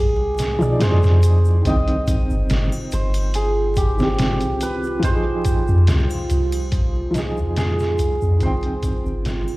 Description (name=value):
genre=trip hop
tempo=71 BPM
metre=4/4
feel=straight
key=C minor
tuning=A4 = 440 Hz
part: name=hammered dulcimer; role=melody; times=0.0-9.6 s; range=G4 to Eb5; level=-25 LUFS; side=right 1 dB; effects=tape echo
part: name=felt-muted upright piano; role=accompaniment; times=0.0-9.6 s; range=Eb3 to G5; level=-26 LUFS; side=equal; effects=tremolo
part: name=soft 808-style bass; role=bass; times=0.0-9.5 s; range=G1 to B2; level=-19 LUFS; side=equal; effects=none
part: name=trip hop sampler-style drum kit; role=drums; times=0.4-9.5 s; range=hi-hat, kick drum, snare drum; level=-22 LUFS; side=equal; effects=none
part: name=egg shaker and triangle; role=percussion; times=0.4-9.6 s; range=none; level=-42 LUFS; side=left 3 dB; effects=none
part: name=dark analog pad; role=sustained chords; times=2.7-9.6 s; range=F4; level=-30 LUFS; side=right 4 dB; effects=chorus, phaser
room=small room ambience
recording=played on a big sound system in a bare room, large studio reverb, vinyl crackle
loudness=-17 LUFS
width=side -20 dB against mid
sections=0.0-9.6 A section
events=fade-out 6.2-9.6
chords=0.0 Fm7; 1.7 Cm; 5.0 Fm7; 8.4 Cm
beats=0.81 | 1.65 2.50 3.34 4.19 | 5.03 5.88 6.72 7.57 | 8.41 9.26